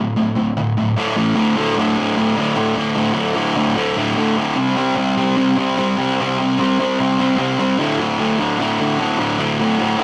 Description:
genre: rock.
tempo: 149 BPM.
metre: 4/4.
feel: straight.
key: unclear.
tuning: A4 = 440 Hz.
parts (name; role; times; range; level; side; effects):
fuzz guitar; solo; 0.0-10.0 s; D2 to C4; -18 LUFS; equal; distortion.
room: moderate stone room reverb, RT60 1.0 s.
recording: rough rehearsal-room recording, warm saturation.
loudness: -18 LUFS.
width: mono.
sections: 0.0-1.3 A section; 1.3-10.0 B section.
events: none.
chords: 0.0 D5; 1.1 A5; 1.3 D5; 4.6 C5; 7.8 D5.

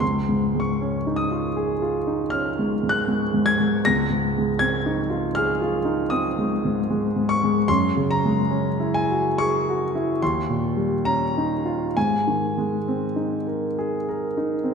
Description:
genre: classical, impressionist solo piano.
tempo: 65-80 BPM.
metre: 5/4.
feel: rubato.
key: Ab mixolydian.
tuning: A4 = 440 Hz.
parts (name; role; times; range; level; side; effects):
warm grand piano; solo; 0.0-14.7 s; Db2 to Bb6; -20 LUFS; equal; none.
room: wet scoring stage reverb, RT60 1.8 s.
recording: none.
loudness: -20 LUFS.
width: side -6 dB against mid.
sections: 0.0-14.7 A section.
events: none.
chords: 0.0 Dbadd9; 3.8 Bbm11/Db; 7.7 Gb9; 10.2 Eb13; 12.0 Abadd9.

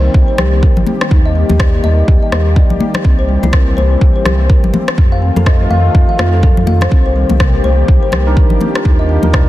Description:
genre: afro house.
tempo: 124 BPM.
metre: 4/4.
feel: swing 59% on 16ths.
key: C dorian.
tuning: A4 = 445 Hz.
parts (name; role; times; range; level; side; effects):
warm analog pad; sustained chords; 0.0-9.5 s; Eb3 to G4; -20 LUFS; left 2 dB; chorus, sidechain pumping.
kalimba; arpeggios; 0.0-9.5 s; G3 to F5; -19 LUFS; left 2 dB; sidechain pumping, digital delay.
warm sub bass; bass; 0.0-9.5 s; G1 to F2; -14 LUFS; equal; sidechain pumping.
electronic kick drum; drums; 0.1-9.5 s; none; -10 LUFS; equal; none.
deep house drum kit; drums; 0.4-9.5 s; rim click, toms; -21 LUFS; left 2 dB; none.
congas; percussion; 0.4-9.3 s; none; -18 LUFS; left 3 dB; none.
mellow tine electric piano; stabs; 8.3-9.5 s; D4 to Bb4; -19 LUFS; right 5 dB; sidechain pumping, digital delay.
room: small room ambience.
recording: dense, heavily limited modern master.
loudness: -9 LUFS.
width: side -15 dB against mid.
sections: 0.0-9.5 A section.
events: none.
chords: 0.0 Cm7; 1.1 Ebmaj7; 3.0 C7; 5.0 F7; 6.9 Cm7; 8.9 Ebmaj7.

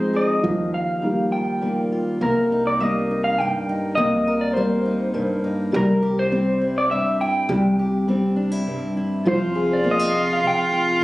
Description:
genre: acoustic folk-pop ballad.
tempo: 102 BPM.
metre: 3/4.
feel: straight.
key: C minor.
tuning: A4 = 440 Hz.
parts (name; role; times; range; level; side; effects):
electric guitar through a small old amp; melody; 0.0-11.0 s; Bb4 to G5; -23 LUFS; equal; tremolo.
fingerpicked steel-string acoustic guitar; accompaniment; 0.0-11.0 s; G2 to Bb4; -24 LUFS; equal; none.
felt-muted upright piano; arpeggios; 0.0-11.0 s; Eb3 to Ab4; -23 LUFS; equal; none.
upright bass; bass; 0.4-10.4 s; C2 to Eb2; -33 LUFS; equal; none.
warm cello; second line; 9.3-11.0 s; F4; -23 LUFS; equal; slapback echo.
room: light reverb.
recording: recorded on a phone in the room, club reverb.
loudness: -18 LUFS.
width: side -18 dB against mid.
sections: 0.0-2.2 A section; 2.2-11.0 B section.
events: none.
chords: 0.4 Ebadd9; 2.2 Cm7; 5.7 C; 9.3 Fm/C.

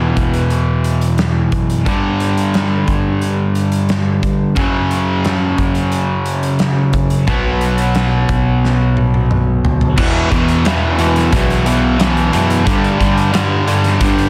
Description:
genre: quiet-loud alternative rock.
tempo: 89 BPM.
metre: 4/4.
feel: straight.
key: E dorian.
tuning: A4 = 439 Hz.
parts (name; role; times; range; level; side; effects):
cranked stack guitar; riff; 0.0-14.3 s; E2 to B3; -17 LUFS; equal; overdrive.
fingered electric bass; bass; 0.0-14.3 s; B1 to G2; -21 LUFS; equal; none.
big rock drum kit; drums; 0.2-14.3 s; crash cymbal, hi-hat, kick drum, snare drum, toms; -22 LUFS; equal; none.
room: small room ambience.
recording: dense, heavily limited modern master.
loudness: -15 LUFS.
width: mono.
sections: 0.0-10.0 A section; 10.0-14.3 B section.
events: drum fill 8.6-10.0.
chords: 0.0 E5; 1.9 G5; 4.6 F#5; 7.3 B5; 10.0 E5; 12.7 G5.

